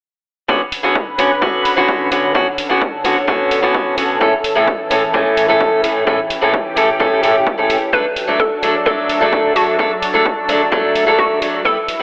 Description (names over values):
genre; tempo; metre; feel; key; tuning
EDM, festival progressive house; 129 BPM; 4/4; straight; B minor; A4 = 440 Hz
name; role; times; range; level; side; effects
fingerpicked steel-string acoustic guitar; accompaniment; 0.5-12.0 s; A2 to B4; -17 LUFS; equal; sidechain pumping, digital delay
lush unison pad; sustained chords; 0.8-12.0 s; D3 to B4; -24 LUFS; equal; chorus, phaser, sidechain pumping
electronic kick drum; drums; 0.5-11.7 s; none; -23 LUFS; equal; high-pass filter on kick, high-pass filter on room
electronic hi-hat; drums; 0.7-12.0 s; none; -27 LUFS; equal; none
hollow square pluck; melody; 7.9-12.0 s; F#4 to B4; -21 LUFS; equal; subtle chorus, dub echo
room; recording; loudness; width
wet scoring stage reverb, RT60 1.9 s, digital ambience; telephone sound; -15 LUFS; mono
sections
0.5-12.0 A section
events
none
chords
0.5 Bmadd9; 4.2 A; 7.9 D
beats
| 0.49 0.95 1.42 1.89 | 2.35 2.82 3.28 3.75 | 4.21 4.68 5.14 5.61 | 6.07 6.54 7.00 7.47 | 7.93 8.40 8.86 9.33 | 9.79 10.26 10.72 11.19 | 11.65